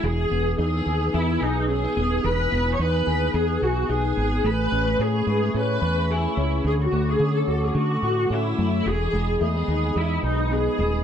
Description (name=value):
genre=indie pop, bedroom pop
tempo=109 BPM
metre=4/4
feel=swing 55% on 16ths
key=E major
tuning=A4 = 440 Hz
part: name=rich viola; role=melody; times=0.0-11.0 s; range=D#4 to C#5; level=-25 LUFS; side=equal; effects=ensemble chorus, slapback echo
part: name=electric guitar through a small old amp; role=accompaniment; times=0.0-11.0 s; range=D3 to B4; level=-27 LUFS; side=left 3 dB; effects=ensemble chorus, warbly pitch drift
part: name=warbly tape-like pad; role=sustained chords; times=0.5-11.0 s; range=A3 to F#6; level=-33 LUFS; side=right 2 dB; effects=chorus, built-in reverb
part: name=fingered electric bass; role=bass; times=0.0-11.0 s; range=D#1 to D3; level=-24 LUFS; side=equal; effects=none
room=light reverb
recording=dark, warm production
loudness=-20 LUFS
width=side -8 dB against mid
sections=0.0-11.0 A section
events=none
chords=0.0 Emaj7; 4.4 Amaj9; 6.6 Dmaj7; 8.9 Emaj7